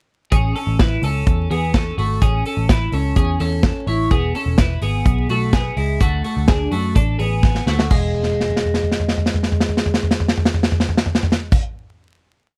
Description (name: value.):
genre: jangly indie pop.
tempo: 126 BPM.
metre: 4/4.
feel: straight.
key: E mixolydian.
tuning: A4 = 438 Hz.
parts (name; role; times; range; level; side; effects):
twelve-string electric guitar; arpeggios; 0.3-11.6 s; G#3 to C#5; -25 LUFS; equal; lush chorus.
vintage muted picked electric bass; bass; 0.3-11.6 s; E1 to F#2; -23 LUFS; equal; none.
modern studio drum kit; drums; 0.3-11.6 s; crash cymbal, hi-hat, kick drum, snare drum, toms; -19 LUFS; equal; none.
room: little or no reverb.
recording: dry, close 1970s-style studio recording, vinyl crackle.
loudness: -18 LUFS.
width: mono.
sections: 0.3-7.9 verse; 7.9-11.7 final chord.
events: drum fill 7.4-7.9, 8.1-11.5.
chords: 0.3 A; 4.1 E; 6.0 D; 7.9 E.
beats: | 0.33 0.80 1.27 1.74 | 2.22 2.69 3.16 3.64 | 4.11 4.59 5.06 5.53 | 6.01 6.48 6.96 7.43 | 7.91 8.38 8.86 9.34 | 9.81 10.29 10.76 11.23.